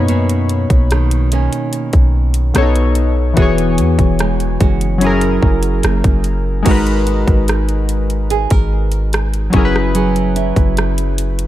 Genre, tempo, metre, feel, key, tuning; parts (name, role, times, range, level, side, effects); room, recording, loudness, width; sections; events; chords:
contemporary R&B; 73 BPM; 4/4; straight; G# minor; A4 = 439 Hz
warm analog keys; accompaniment; 0.0-11.5 s; B2 to B5; -18 LUFS; left 3 dB; chorus
nylon-string guitar; arpeggios; 0.0-11.5 s; F#2 to A#4; -22 LUFS; right 7 dB; ping-pong delay
warm 808-style bass; bass; 0.0-11.5 s; E1 to F#2; -16 LUFS; equal
trap drum kit; drums; 0.1-11.5 s; crash cymbal, hi-hat, kick drum, rim click; -16 LUFS; equal
digital ambience; dark, warm production; -12 LUFS; side -14 dB against mid
0.0-6.7 A section; 6.7-11.5 B section
0.0 Bmaj9; 2.5 B7; 3.4 E69; 5.0 F#7; 6.7 G#m9; 9.5 F#9sus4